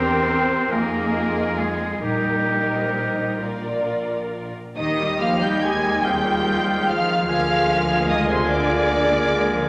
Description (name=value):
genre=classical, slow romantic movement for symphony orchestra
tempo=43-50 BPM (dotted quarters)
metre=6/8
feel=rubato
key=Eb major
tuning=A4 = 440 Hz
part: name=rich symphonic violin section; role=melody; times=0.0-9.7 s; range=D5 to Ab6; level=-31 LUFS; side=equal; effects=none
part: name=clear oboe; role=second line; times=0.0-9.7 s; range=G4 to Ab5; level=-28 LUFS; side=equal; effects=none
part: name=mellow clarinet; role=second line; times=0.0-9.7 s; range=G4 to Bb4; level=-34 LUFS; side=equal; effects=none
part: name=mellow large flute ensemble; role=second line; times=0.0-9.5 s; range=C5 to Ab5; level=-30 LUFS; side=equal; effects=none
part: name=rich symphonic violin section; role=second line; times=0.0-9.7 s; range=Ab4 to Ab5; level=-31 LUFS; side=equal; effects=none
part: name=clear symphonic viola section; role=accompaniment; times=0.0-9.7 s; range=C3 to Ab4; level=-32 LUFS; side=equal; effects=none
part: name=mellow French horn section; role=sustained chords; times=0.0-9.7 s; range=Bb3 to D5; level=-32 LUFS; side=equal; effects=none
part: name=clear studio double bass section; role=bass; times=0.0-9.7 s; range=Bb1 to F2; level=-32 LUFS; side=equal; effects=none
part: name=rich symphonic cello section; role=bass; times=0.0-9.7 s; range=C3 to C4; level=-29 LUFS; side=equal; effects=none
part: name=bright trombone section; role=sustained chords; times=4.8-9.7 s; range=D3 to Ab3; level=-33 LUFS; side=equal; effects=none
room=wet scoring stage reverb, RT60 1.4 s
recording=none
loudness=-21 LUFS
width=mono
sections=0.0-4.8 A section; 4.8-9.7 B section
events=none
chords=0.0 C7/E; 0.7 Fm7; 2.0 Eb/Bb; 3.4 Bb; 4.8 Eb; 6.0 Fm7/Eb; 7.3 Bb7/D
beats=0.71 | 2.03 3.41 | 4.76 6.04 | 7.28 8.49